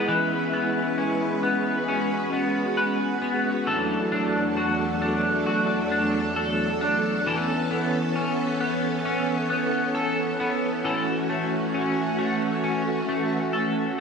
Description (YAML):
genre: dream pop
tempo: 67 BPM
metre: 4/4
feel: straight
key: E major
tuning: A4 = 440 Hz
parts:
  - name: string machine, violins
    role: sustained chords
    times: 0.0-14.0 s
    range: E2 to B4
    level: -25 LUFS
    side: right 1 dB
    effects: ensemble chorus
  - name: electric guitar at the edge of break-up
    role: arpeggios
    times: 0.0-14.0 s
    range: E3 to B4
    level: -26 LUFS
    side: left 2 dB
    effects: analog chorus, ping-pong delay
  - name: vibraphone with soft mallets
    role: texture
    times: 0.0-0.5 s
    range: G#4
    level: -39 LUFS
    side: right 4 dB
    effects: none
room: moderate plate reverb, RT60 2.3 s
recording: none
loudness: -22 LUFS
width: side -5 dB against mid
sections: 0.1-14.0 A section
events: none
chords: 0.1 E6; 3.7 D/E; 10.8 F#m7/E